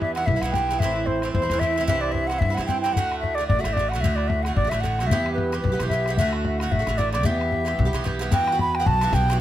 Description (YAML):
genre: celtic folk, Celtic reel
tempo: 223 BPM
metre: 4/4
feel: swing 56% on 8ths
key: E minor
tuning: A4 = 440 Hz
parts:
  - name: bright baroque flute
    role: melody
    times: 0.0-9.4 s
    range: B4 to B5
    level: -24 LUFS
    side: equal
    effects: slapback echo
  - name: Irish bouzouki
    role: accompaniment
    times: 0.0-9.4 s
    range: G2 to G4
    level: -28 LUFS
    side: right 4 dB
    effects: none
  - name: upright bass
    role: bass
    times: 0.0-9.4 s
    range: A1 to G2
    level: -26 LUFS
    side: equal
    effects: none
  - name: bodhran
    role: percussion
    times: 0.0-9.3 s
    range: none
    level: -26 LUFS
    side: left 3 dB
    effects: none
room: little or no reverb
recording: close, detailed microphones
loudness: -20 LUFS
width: side -12 dB against mid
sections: 0.0-8.3 A section; 8.3-9.4 B section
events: none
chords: 0.0 Em; 0.8 Am; 1.9 C; 3.0 D; 5.1 Em; 6.2 D; 7.3 Em; 8.3 Emadd9